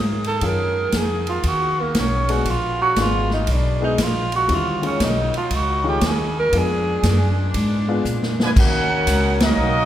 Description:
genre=jazz, big band swing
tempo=118 BPM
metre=4/4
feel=swing 66% on 8ths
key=Eb minor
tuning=A4 = 444 Hz
part: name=mellow saxophone section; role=sustained chords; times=0.0-9.9 s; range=Bb2 to Bb4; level=-31 LUFS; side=equal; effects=none
part: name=upright bass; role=bass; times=0.0-9.9 s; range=Ab1 to Bb2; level=-22 LUFS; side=equal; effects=none
part: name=swinging big-band drum kit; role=drums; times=0.2-9.5 s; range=crash cymbal, hi-hat, kick drum, ride cymbal, snare drum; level=-23 LUFS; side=equal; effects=none
part: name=mellow tenor saxophone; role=melody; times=0.3-7.6 s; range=A#3 to Bb4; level=-21 LUFS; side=right 2 dB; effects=none
part: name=warm baby grand piano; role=accompaniment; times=0.4-8.0 s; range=D3 to Ab4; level=-27 LUFS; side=left 4 dB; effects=none
part: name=bright trumpet section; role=melody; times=8.4-9.9 s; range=Db4 to Ab5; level=-20 LUFS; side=right 2 dB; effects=none
part: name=brilliant trombone section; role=second line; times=8.4-9.9 s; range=D3 to Gb4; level=-24 LUFS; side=left 1 dB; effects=none
room=moderate scoring stage reverb, RT60 1.8 s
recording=recorded in a church or concert hall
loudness=-17 LUFS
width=side -12 dB against mid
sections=0.0-8.6 A section; 8.6-9.9 B section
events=tenor saxophone solo 0.0-8.6; drum fill 8.1-8.6; band accent 9.3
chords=0.4 Bmaj7; 2.5 Bb7b9; 4.5 Ebm7; 6.5 Bb7b9; 8.6 Ebm7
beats=| 0.42 0.93 1.44 1.95 | 2.46 2.97 3.47 3.98 | 4.49 5.00 5.51 6.02 | 6.53 7.04 7.54 8.05 | 8.56 9.07 9.58

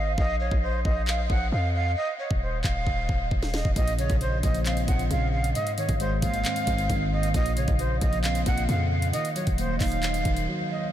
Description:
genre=hip hop, trap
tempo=134 BPM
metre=4/4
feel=half-time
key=Bb minor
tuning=A4 = 441 Hz
part: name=breathy jazz flute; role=melody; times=0.0-10.9 s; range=C5 to Gb5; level=-29 LUFS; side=right 1 dB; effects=low-pass filter, diffuse ambient delay
part: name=hard-hitting 808-style bass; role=bass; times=0.0-10.5 s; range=Eb1 to F2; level=-27 LUFS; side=equal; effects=none
part: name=trap drum kit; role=drums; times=0.2-10.5 s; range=handclaps, hi-hat, kick drum, snare drum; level=-29 LUFS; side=equal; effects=none
part: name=tine electric piano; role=accompaniment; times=3.8-10.9 s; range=Ab2 to Eb5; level=-29 LUFS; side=right 1 dB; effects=wide subtle chorus, low-pass filter
room=moderate huge ambient reverb, RT60 8.9 s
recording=dreamy mix soaked in reverb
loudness=-23 LUFS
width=side -11 dB against mid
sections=0.0-10.9 A section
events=break 0.0-3.8, 10.5-10.9; drum fill 2.9-3.8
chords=0.2 Bb5; 2.0 Dbadd9/Eb (rootless); 3.8 Bbmadd9; 5.6 Abadd9; 7.3 Bbmadd9; 9.1 Ebm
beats=| 0.18 0.63 1.07 1.52 | 1.97 2.42 2.87 3.31 | 3.76 4.21 4.66 5.10 | 5.55 6.00 6.45 6.89 | 7.34 7.79 8.24 8.69 | 9.13 9.58 10.03 10.48

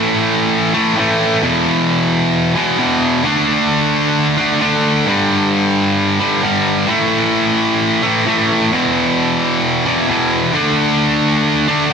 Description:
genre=rock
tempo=132 BPM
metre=4/4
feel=straight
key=unclear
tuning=A4 = 444 Hz
part: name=high-gain distorted guitar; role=solo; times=0.0-11.9 s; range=E2 to D4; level=-12 LUFS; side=equal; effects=distortion, digital delay
room=moderate large studio reverb, RT60 0.9 s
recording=dense, heavily limited modern master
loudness=-12 LUFS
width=side -6 dB against mid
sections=0.0-11.9 A section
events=none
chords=0.0 A5; 1.4 E5; 3.3 D5; 5.1 G5; 6.9 A5; 8.7 E5; 10.5 D5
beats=0.07 0.53 0.98 | 1.44 1.89 2.35 2.80 | 3.26 3.71 4.17 4.62 | 5.08 5.53 5.99 6.44 | 6.90 7.36 7.81 8.27 | 8.72 9.18 9.64 10.09 | 10.55 11.01 11.46 11.92

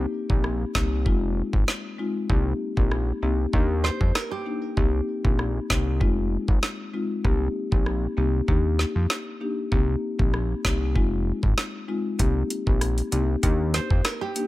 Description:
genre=dancehall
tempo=97 BPM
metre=4/4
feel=straight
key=C minor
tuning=A4 = 441 Hz
part: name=marimba with soft mallets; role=accompaniment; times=0.0-14.5 s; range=Ab3 to G4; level=-28 LUFS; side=left 3 dB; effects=none
part: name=fat analog bass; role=bass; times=0.0-14.0 s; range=F1 to F2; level=-25 LUFS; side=equal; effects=none
part: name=island pop drum kit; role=drums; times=0.3-14.5 s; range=hi-hat, kick drum, rim click, snare drum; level=-24 LUFS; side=equal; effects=none
part: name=nylon-string guitar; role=arpeggios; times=3.8-4.7, 13.7-14.5 s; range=G4 to C5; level=-32 LUFS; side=right 5 dB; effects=tape echo
room=small room ambience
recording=none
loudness=-22 LUFS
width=side -17 dB against mid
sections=0.0-14.5 A section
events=none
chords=0.0 Cm7; 1.1 Fm7; 2.3 Cm7; 3.5 Ebmaj7; 4.8 Cm7; 6.0 Fm7; 7.2 Cm7; 8.5 Ebmaj7; 9.7 Cm7; 11.0 Fm7; 12.2 Cm7; 13.4 Ebmaj7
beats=0.44 1.06 1.68 | 2.30 2.92 3.53 4.15 | 4.77 5.39 6.01 6.63 | 7.25 7.86 8.48 9.10 | 9.72 10.34 10.96 11.57 | 12.19 12.81 13.43 14.05

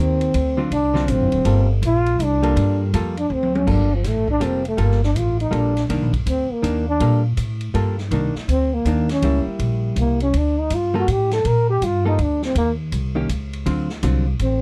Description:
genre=jazz, small-group swing and bop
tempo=162 BPM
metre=3/4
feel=swing 64% on 8ths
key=G minor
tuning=A4 = 440 Hz
part: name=breathy trombone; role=melody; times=0.0-14.6 s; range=F3 to Bb4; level=-23 LUFS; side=equal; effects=none
part: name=vintage hollow-body jazz guitar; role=accompaniment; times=0.0-14.3 s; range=D3 to A4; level=-26 LUFS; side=equal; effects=none
part: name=upright bass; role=bass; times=0.0-14.6 s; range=D1 to Bb2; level=-23 LUFS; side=equal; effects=none
part: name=swinging big-band drum kit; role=drums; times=0.2-14.5 s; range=crash cymbal, hi-hat, kick drum, ride cymbal, snare drum, toms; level=-33 LUFS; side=equal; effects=none
room=little or no reverb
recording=none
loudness=-20 LUFS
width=mono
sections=0.0-3.7 A section; 3.7-14.6 A section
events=trombone solo 0.0-14.6; drum fill 3.3-3.7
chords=0.3 D7#9; 1.5 Gm9; 2.2 Csus2; 2.6 Gm9; 3.3 Csus2/D; 3.7 Gm9; 5.9 Cm9; 7.0 Gm9; 8.1 Cm9; 9.2 C#dim7; 10.3 Gm9; 12.6 Eb7(no3); 13.7 D7#9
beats=| 0.35 0.72 1.08 | 1.46 1.82 2.19 | 2.56 2.93 3.30 | 3.67 4.04 4.41 | 4.78 5.15 5.52 | 5.89 6.26 6.63 | 7.00 7.37 7.74 | 8.11 8.48 8.85 | 9.22 9.59 9.96 | 10.33 10.70 11.07 | 11.44 11.81 12.19 | 12.55 12.93 13.29 | 13.66 14.04 14.40

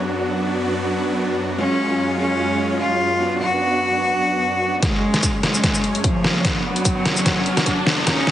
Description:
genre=heavy wobble dubstep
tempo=148 BPM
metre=4/4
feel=swing 55% on 16ths, half-time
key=unclear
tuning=A4 = 440 Hz
part: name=supersaw chords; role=sustained chords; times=0.0-8.3 s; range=F#2 to C#5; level=-23 LUFS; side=equal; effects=sidechain pumping
part: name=bright cello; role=melody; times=1.6-8.3 s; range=E#3 to F#4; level=-20 LUFS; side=equal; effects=dub echo
part: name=dubstep drum kit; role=drums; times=4.8-8.3 s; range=hi-hat, shaker, snare drum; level=-19 LUFS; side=equal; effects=low-pass filter on perc, low-pass filter on hats, low-pass filter on cymbals, low-pass filter on snare, low-pass filter on toms, low-pass filter on room
part: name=electronic kick drum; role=drums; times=4.8-8.2 s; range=none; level=-23 LUFS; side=equal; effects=none
part: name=riser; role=sound effects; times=5.9-8.3 s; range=none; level=-28 LUFS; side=equal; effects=none
room=moderate lush hall reverb, RT60 2.5 s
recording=heavily compressed radio sound, high-pass filter, nothing above 10.4 kHz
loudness=-17 LUFS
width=side -12 dB against mid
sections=0.0-4.8 A section; 4.8-8.3 B section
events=filter sweep on drum 0.0-4.8; build-up 4.8-8.3; drum fill 4.8-8.3; riser 5.9-8.3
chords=0.0 Bm/F#; 1.6 C#/F#; 3.2 Bm/F#; 4.8 F#sus2; 6.4 Bm/F#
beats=0.37 0.77 1.18 | 1.58 1.99 2.39 2.80 | 3.20 3.61 4.01 4.42 | 4.83 5.23 5.64 6.04 | 6.45 6.85 7.26 7.66 | 8.07

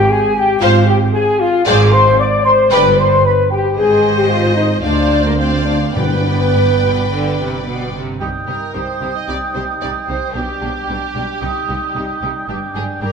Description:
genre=quick classical-period movement for symphony orchestra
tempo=112 BPM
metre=4/4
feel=rubato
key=C minor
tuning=A4 = 441 Hz
part: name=mellow flute section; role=second line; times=0.0-13.1 s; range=Bb4 to Eb6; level=-19 LUFS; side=right 1 dB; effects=none
part: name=mellow French horn section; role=sustained chords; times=0.0-13.1 s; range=G3 to D5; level=-17 LUFS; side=left 3 dB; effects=none
part: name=rich studio violin section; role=melody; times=0.6-13.1 s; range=G4 to G5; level=-27 LUFS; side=left 4 dB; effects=none
part: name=rich studio violin section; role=second line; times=0.6-13.1 s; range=G4 to Eb5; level=-25 LUFS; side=left 1 dB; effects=none
part: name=clear studio viola section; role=accompaniment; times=0.6-13.1 s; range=G3 to C5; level=-25 LUFS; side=right 1 dB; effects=none
part: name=clear studio cello section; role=bass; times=0.6-13.1 s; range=D2 to D3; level=-21 LUFS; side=right 2 dB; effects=none
part: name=warm studio double bass section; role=bass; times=0.6-13.1 s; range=G1 to D2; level=-20 LUFS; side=right 3 dB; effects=none
part: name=timpani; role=percussion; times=6.0-6.8 s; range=G2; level=-22 LUFS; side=left 1 dB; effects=none
part: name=warm oboe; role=second line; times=8.2-13.1 s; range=G5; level=-25 LUFS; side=right 4 dB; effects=none
room=wet scoring stage reverb, RT60 1.9 s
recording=none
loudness=-13 LUFS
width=side -6 dB against mid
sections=0.0-8.2 A section; 8.2-13.1 B section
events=none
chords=0.0 Fm; 1.7 Dm7b5/Ab; 2.7 G; 3.8 Ab; 4.8 Dm7; 6.0 G; 8.2 Cm; 10.4 G/B; 11.4 Cm; 12.5 G5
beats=0.10 0.62 1.14 | 1.66 2.19 2.72 3.25 | 3.78 4.31 4.85 5.40 | 5.96 6.53 7.09 7.65 | 8.21 8.75 9.29 9.82 | 10.36 10.89 11.42 11.96 | 12.49 13.02

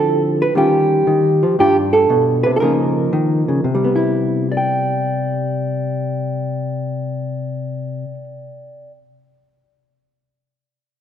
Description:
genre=solo jazz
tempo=116 BPM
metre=4/4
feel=swing 69% on 8ths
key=unclear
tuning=A4 = 439 Hz
part: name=hollow-body jazz guitar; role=solo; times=0.0-9.0 s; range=G2 to G5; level=-15 LUFS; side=equal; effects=none
room=wet concert hall reverb, RT60 2.2 s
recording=recorded in a church or concert hall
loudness=-15 LUFS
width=side -9 dB against mid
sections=0.0-3.6 A section; 3.6-7.8 B section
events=none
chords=0.0 Dm9; 0.5 Eb9; 1.6 G9; 2.6 Db69; 3.6 Cmaj9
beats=0.03 0.55 1.06 | 1.57 2.09 2.61 3.12 | 3.64 4.15 4.67 5.18 | 5.70 6.21 6.72 7.24

